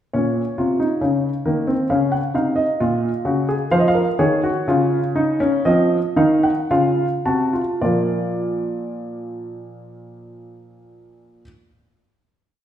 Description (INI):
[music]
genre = classical, baroque-style 3-part fugue for grand piano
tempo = 52-69 BPM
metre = 4/4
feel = straight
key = Bb minor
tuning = A4 = 441 Hz
[part]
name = warm baby grand piano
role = solo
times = 0.1-11.4 s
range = Bb2 to A5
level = -18 LUFS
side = equal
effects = none
[sound]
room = wet recital hall reverb, RT60 1.4 s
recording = heard from further back in the room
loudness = -17 LUFS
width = side -10 dB against mid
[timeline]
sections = 0.1-7.8 exposition; 7.8-12.4 final chord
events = slowing down 0.1-10.1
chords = 0.1 Bbm; 5.6 F7; 7.8 Bb